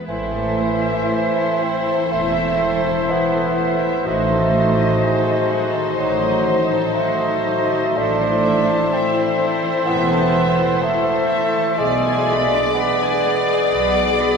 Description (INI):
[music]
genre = classical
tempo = 62 BPM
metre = 4/4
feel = rubato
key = A minor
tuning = A4 = 445 Hz
[part]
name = rich symphonic violin section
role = second line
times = 0.0-14.4 s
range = E4 to D6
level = -28 LUFS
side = equal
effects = none
[part]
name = concert harp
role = arpeggios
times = 0.0-14.4 s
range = A2 to D5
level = -27 LUFS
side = left 5 dB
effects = none
[part]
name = rich studio violin section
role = melody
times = 0.1-14.4 s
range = C5 to D5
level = -28 LUFS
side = left 3 dB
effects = none
[part]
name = clear clarinet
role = second line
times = 0.1-14.4 s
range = E4 to A4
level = -28 LUFS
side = left 1 dB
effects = none
[part]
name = small flute group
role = second line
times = 0.1-14.4 s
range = D5 to E5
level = -28 LUFS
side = left 1 dB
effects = none
[part]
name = warm oboe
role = second line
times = 0.1-14.4 s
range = C5 to D5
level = -27 LUFS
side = right 1 dB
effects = none
[part]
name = rich symphonic viola section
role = accompaniment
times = 0.1-14.4 s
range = Eb4 to G#4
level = -28 LUFS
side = right 1 dB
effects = none
[part]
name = warm bassoon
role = accompaniment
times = 0.1-14.4 s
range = E3 to D4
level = -21 LUFS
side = right 2 dB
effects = none
[part]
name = dark French horn section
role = sustained chords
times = 0.1-14.4 s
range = Eb4 to D5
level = -25 LUFS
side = left 3 dB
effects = none
[part]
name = rich symphonic cello section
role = bass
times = 0.1-14.4 s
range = E2 to B2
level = -28 LUFS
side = right 2 dB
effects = none
[part]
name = rich symphonic double bass section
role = bass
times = 0.1-14.4 s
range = E1 to B1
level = -28 LUFS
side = right 2 dB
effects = none
[sound]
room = wet cathedral reverb, RT60 5.2 s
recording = minimal, uncompressed stereo recording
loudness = -16 LUFS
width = side -6 dB against mid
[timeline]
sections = 0.1-14.4 A section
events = none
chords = 0.1 Am; 4.1 Adim7; 8.0 Am; 11.8 G#dim/B